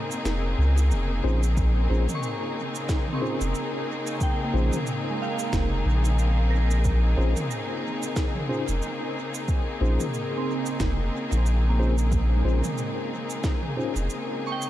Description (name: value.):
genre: ambient dub.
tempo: 91 BPM.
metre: 4/4.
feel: swing 58% on 16ths.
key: Bb minor.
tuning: A4 = 438 Hz.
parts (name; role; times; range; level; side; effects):
warm symphonic string section; sustained chords; 0.0-14.7 s; Db3 to Ab4; -30 LUFS; left 1 dB; none.
soft synth bell; arpeggios; 0.0-14.7 s; Ab3 to Db6; -35 LUFS; right 4 dB; chorus, phaser, tape echo.
organic electronic drum kit; drums; 0.1-14.7 s; cabasa, snare drum, toms; -35 LUFS; right 1 dB; small room ambience, dub echo.
round analog bass; bass; 0.3-14.1 s; F1 to Db2; -22 LUFS; equal; none.
mellow tine electric piano; stabs; 1.2-13.9 s; Db4 to C5; -34 LUFS; left 2 dB; medium stereo tremolo, dub echo.
electronic kick drum; drums; 1.6-13.6 s; none; -26 LUFS; equal; overdrive, small room ambience.
room: light reverb, digital ambience.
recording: none.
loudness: -23 LUFS.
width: side -14 dB against mid.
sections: 0.0-14.7 A section.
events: break 0.0-1.6.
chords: 0.0 Bbm11.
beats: 0.25 0.91 | 1.57 2.23 2.89 3.55 | 4.21 4.87 5.53 6.19 | 6.85 7.51 8.16 8.82 | 9.48 10.14 10.80 11.46 | 12.12 12.78 13.44 14.10.